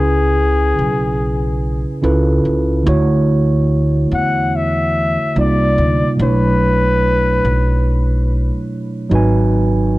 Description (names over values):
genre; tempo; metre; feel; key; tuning
lo-fi hip hop; 72 BPM; 4/4; swing 60% on 16ths; unclear; A4 = 439 Hz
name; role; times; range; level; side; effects
breathy flugelhorn; melody; 0.0-8.7 s; G#4 to F#5; -18 LUFS; left 2 dB; none
mellow tine electric piano; accompaniment; 0.0-10.0 s; B2 to G#5; -17 LUFS; right 2 dB; cassette tape
upright bass; bass; 0.0-10.0 s; G#1 to E2; -17 LUFS; equal; none
room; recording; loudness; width
studio ambience; cassette tape; -13 LUFS; side -18 dB against mid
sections
0.0-10.0 A section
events
none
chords
0.0 C#m7; 2.0 C#7alt; 2.9 Dmaj7; 5.4 Cm11; 6.2 Bm11; 9.1 G#m7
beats
0.36 1.20 2.03 | 2.86 3.70 4.53 5.36 | 6.20 7.03 7.86 8.70 | 9.53